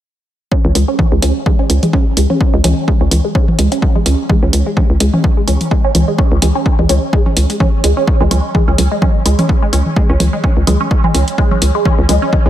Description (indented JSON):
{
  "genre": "minimal techno",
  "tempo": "127 BPM",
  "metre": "4/4",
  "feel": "swing 56% on 16ths",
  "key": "unclear",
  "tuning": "A4 = 439 Hz",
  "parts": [
    { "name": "resonant blip pluck", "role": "riff", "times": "0.5-12.5 s", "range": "G#3 to C#4", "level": "-18 LUFS", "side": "right 1 dB", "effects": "phaser, sidechain pumping, diffuse ambient delay" },
    { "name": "electronic kick drum", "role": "drums", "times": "0.5-12.4 s", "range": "none", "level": "-13 LUFS", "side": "equal", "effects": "overdrive" },
    { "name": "hollow knocking FM bass", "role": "bass", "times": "0.6-12.5 s", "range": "C#2", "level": "-13 LUFS", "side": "equal", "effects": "sidechain pumping" },
    { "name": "electronic toms and congas", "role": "percussion", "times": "0.6-12.4 s", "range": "none", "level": "-20 LUFS", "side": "equal", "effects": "tape echo" },
    { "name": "electronic hi-hat", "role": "drums", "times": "0.8-12.2 s", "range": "none", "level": "-21 LUFS", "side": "right 1 dB", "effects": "overdrive" }
  ],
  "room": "light reverb, digital ambience",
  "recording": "none",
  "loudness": "-11 LUFS",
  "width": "side -12 dB against mid",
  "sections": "0.5-12.5 A section",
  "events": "none",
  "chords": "0.5 C#5"
}